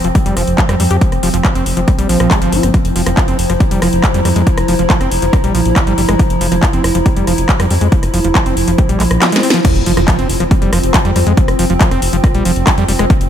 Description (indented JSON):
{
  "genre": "psychedelic trance",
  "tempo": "139 BPM",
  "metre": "4/4",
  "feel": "straight",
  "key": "unclear",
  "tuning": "A4 = 440 Hz",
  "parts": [
    { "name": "evolving wavetable pad", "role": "sustained chords", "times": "0.0-13.3 s", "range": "F3 to E4", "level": "-20 LUFS", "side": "right 2 dB", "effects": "chorus, built-in reverb, sidechain pumping" },
    { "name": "overdriven acid bass", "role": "riff", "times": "0.0-13.1 s", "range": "F3 to G4", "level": "-19 LUFS", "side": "moving between left 3 dB and right 5 dB", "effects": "distortion, auto-pan, sidechain pumping, dub echo" },
    { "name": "round analog bass", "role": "bass", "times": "0.0-13.3 s", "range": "F1 to F2", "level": "-16 LUFS", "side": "equal", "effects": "none" },
    { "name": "techno drum kit", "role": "drums", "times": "0.0-13.3 s", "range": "crash cymbal, handclaps, hi-hat, rim click, snare drum", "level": "-18 LUFS", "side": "left 1 dB", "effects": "studio reverb" },
    { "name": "warbly tape-like pad", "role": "texture", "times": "0.0-13.3 s", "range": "F3 to Bb5", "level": "-21 LUFS", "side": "left 2 dB", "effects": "chorus, built-in reverb, sidechain pumping" },
    { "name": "electronic kick drum", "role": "drums", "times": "0.2-13.2 s", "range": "none", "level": "-13 LUFS", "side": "equal", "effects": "overdrive, studio reverb" },
    { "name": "impact", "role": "sound effects", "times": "9.6-11.4 s", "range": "none", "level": "-22 LUFS", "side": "equal", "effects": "none" }
  ],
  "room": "little or no reverb",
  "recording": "none",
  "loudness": "-10 LUFS",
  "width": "side -9 dB against mid",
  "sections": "0.0-9.6 A section; 9.6-13.3 B section",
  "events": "drum fill 9.2-9.6; drop 9.6-13.3; impact 9.6-11.4",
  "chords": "0.0 F5",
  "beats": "0.15 0.58 | 1.01 1.45 1.88 2.31 | 2.74 3.17 3.60 4.04 | 4.47 4.90 5.33 5.76 | 6.19 6.63 7.06 7.49 | 7.92 8.35 8.78 9.22 | 9.65 10.08 10.51 10.94 | 11.37 11.81 12.24 12.67 | 13.10"
}